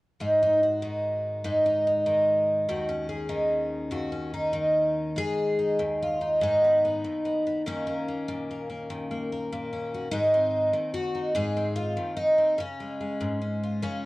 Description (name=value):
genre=folk, solo fingerstyle acoustic guitar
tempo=48 BPM (dotted quarters)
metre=6/8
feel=straight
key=unclear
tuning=A4 = 440 Hz
part: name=picked twelve-string acoustic guitar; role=solo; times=0.2-14.1 s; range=D#2 to G#4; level=-24 LUFS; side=equal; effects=none
room=moderate studio ambience, RT60 0.5 s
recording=worn, warbling old tape, cassette tape, warbly pitch drift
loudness=-24 LUFS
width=side -20 dB against mid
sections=0.2-5.2 A section; 5.2-14.1 B section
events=none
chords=0.2 G#5; 2.7 D#m7; 5.2 G#m; 7.7 D#7(no3); 10.1 G#; 12.6 C#